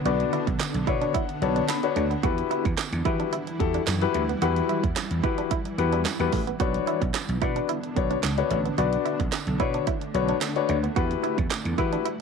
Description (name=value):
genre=dance-pop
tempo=110 BPM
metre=4/4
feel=straight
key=B minor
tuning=A4 = 440 Hz
part: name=granular cloud pad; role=sustained chords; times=0.0-12.2 s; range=D3 to F#5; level=-32 LUFS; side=right 1 dB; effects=built-in reverb, sidechain pumping
part: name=downlifter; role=sound effects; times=0.0-2.2 s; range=none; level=barely audible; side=none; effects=none
part: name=dark baby grand piano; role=accompaniment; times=0.1-12.0 s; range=D4 to B5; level=-27 LUFS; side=left 12 dB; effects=sidechain pumping
part: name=direct-recorded clean electric guitar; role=riff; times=0.1-12.1 s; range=A3 to F#4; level=-32 LUFS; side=right 16 dB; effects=lush chorus
part: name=vintage slap bass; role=bass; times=0.1-12.0 s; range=A1 to E3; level=-28 LUFS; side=right 1 dB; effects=sidechain pumping
part: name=house drum kit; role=drums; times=0.1-12.2 s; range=handclaps, hi-hat, kick drum, snare drum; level=-29 LUFS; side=right 4 dB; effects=none
part: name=tambourine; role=percussion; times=0.6-11.6 s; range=none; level=-41 LUFS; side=right 18 dB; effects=none
room=light reverb, digital ambience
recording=1960s-style stereo with parts hard left and right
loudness=-23 LUFS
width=side -6 dB against mid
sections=0.0-12.2 A section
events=grand piano fill 0.6-2.2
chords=0.0 Bmadd9; 2.2 Emadd9; 6.6 Bmadd9; 11.0 Emadd9